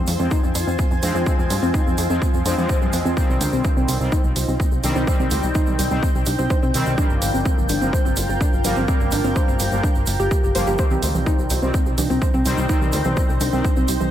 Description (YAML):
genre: melodic techno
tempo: 126 BPM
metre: 4/4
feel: straight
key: C minor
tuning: A4 = 440 Hz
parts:
  - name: analog synth brass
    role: stabs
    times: 0.0-13.6 s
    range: Eb3 to C4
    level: -27 LUFS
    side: left 1 dB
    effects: chorus, sidechain pumping, dub echo
  - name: plucky analog bass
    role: bass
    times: 0.0-14.1 s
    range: G1 to G2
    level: -23 LUFS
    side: equal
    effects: sidechain pumping
  - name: granular cloud pad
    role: texture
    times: 0.0-14.1 s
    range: Eb4 to Ab5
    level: -27 LUFS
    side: right 1 dB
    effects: built-in reverb, sidechain pumping
  - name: electronic hi-hat and congas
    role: drums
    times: 0.1-14.1 s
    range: none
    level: -29 LUFS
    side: right 3 dB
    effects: overdrive
  - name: egg shaker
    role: percussion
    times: 0.1-14.1 s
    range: none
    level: -33 LUFS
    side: right 3 dB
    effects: none
  - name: soft round pluck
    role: arpeggios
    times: 0.2-13.8 s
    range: C4 to C5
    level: -25 LUFS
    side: equal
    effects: chorus, sidechain pumping, dub echo
  - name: electronic kick drum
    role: drums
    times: 0.3-13.7 s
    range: none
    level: -20 LUFS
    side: equal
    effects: overdrive
room: light reverb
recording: echo-heavy mix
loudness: -17 LUFS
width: side -11 dB against mid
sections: 0.0-14.1 A section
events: none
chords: 0.0 Fm; 3.2 Cm; 7.0 Gm7; 10.8 Cm